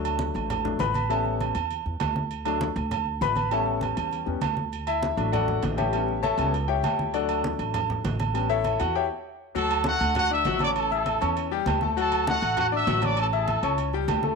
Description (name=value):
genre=latin, salsa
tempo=199 BPM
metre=4/4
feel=straight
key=D major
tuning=A4 = 440 Hz
part: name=clear concert grand piano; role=accompaniment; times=0.0-14.4 s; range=F#3 to F#6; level=-28 LUFS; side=left 11 dB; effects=none
part: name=upright bass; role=bass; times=0.0-14.4 s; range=A1 to E2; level=-30 LUFS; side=right 1 dB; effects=none
part: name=congas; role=percussion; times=0.0-14.4 s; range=none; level=-34 LUFS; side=equal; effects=none
part: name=agogo bells and timbales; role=percussion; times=0.1-14.2 s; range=none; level=-29 LUFS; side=right 17 dB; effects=none
part: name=clear trumpet section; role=melody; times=9.6-13.8 s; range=F#4 to E6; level=-26 LUFS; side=equal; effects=none
room=moderate echo chamber reverb, RT60 1.3 s, small room ambience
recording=1960s-style stereo with parts hard left and right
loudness=-23 LUFS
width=side -4 dB against mid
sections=0.0-9.6 A section; 9.6-14.4 B section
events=grand piano solo 0.0-9.6; break 9.0-9.6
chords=0.0 D; 1.1 A7; 2.3 D; 3.5 A7; 4.7 D; 5.9 A7; 7.1 D; 8.3 A7; 9.6 D; 10.8 A7; 12.0 D; 13.2 A7